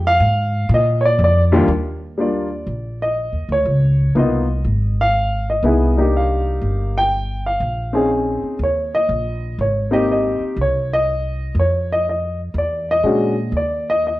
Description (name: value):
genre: jazz piano trio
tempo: 122 BPM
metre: 4/4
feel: swing 66% on 8ths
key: Eb major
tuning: A4 = 439 Hz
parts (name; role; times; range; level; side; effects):
- upright bass; bass; 0.0-14.2 s; G1 to Bb2; -20 LUFS; equal; none
- warm baby grand piano; melody; 0.1-14.2 s; Eb2 to G5; -18 LUFS; equal; none
room: light reverb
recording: worn, warbling old tape, cassette tape, warbly pitch drift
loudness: -16 LUFS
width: side -17 dB against mid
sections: 0.0-1.7 A section; 1.7-14.2 B section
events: grand piano solo 0.0-1.7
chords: 0.0 Fm; 0.7 Bb; 1.7 Ebmaj7(no3); 3.7 Dbadd9; 5.6 Cm9; 7.6 Bbm11; 8.6 Eb5; 9.6 Abmaj9; 11.6 Dbadd9/F; 12.5 E13; 13.5 Eb5